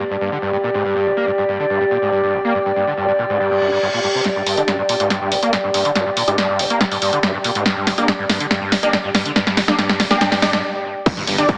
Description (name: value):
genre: driving peak-time techno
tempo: 141 BPM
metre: 4/4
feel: straight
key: G minor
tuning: A4 = 442 Hz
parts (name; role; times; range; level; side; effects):
- screaming distorted acid line; riff; 0.0-11.6 s; G1 to Bb3; -25 LUFS; equal; distortion, ensemble chorus, sidechain pumping, tape echo
- downlifter, reverse cymbal and impact; sound effects; 3.5-4.3, 11.1-11.6 s; none; -28 LUFS; equal; none
- warbly tape-like pad; texture; 0.0-10.6 s; G4 to G5; -22 LUFS; equal; chorus, built-in reverb, phaser, sidechain pumping
- punchy analog drum machine; drums; 4.3-11.6 s; crash cymbal, hi-hat, ride cymbal, snare drum; -21 LUFS; equal; low-pass filter on hats, low-pass filter on snare, low-pass filter on cymbals
- rave stab; stabs; 4.6-11.5 s; D4 to D5; -24 LUFS; equal; chorus, built-in reverb, phaser, sidechain pumping, tape echo
- electronic kick drum; drums; 11.1-11.6 s; none; -20 LUFS; equal; none
- saturated sub bass; bass; 11.3-11.5 s; G1; -34 LUFS; equal; overdrive, sidechain pumping, low-pass filter
room: wet stone room reverb, RT60 1.1 s, digital ambience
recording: heavily compressed radio sound, multiband compression, small speaker sound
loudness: -18 LUFS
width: mono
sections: 0.0-4.3 A section; 4.3-11.1 B section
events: filter sweep on acid bass 0.0-4.3, 4.3-11.1; reverse cymbal 3.5-4.3; build-up 4.3-11.1; drum fill 4.3-10.6; filter sweep on synth stab 4.3-11.1; stop 10.6-11.1; impact 11.1-11.6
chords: 0.0 G5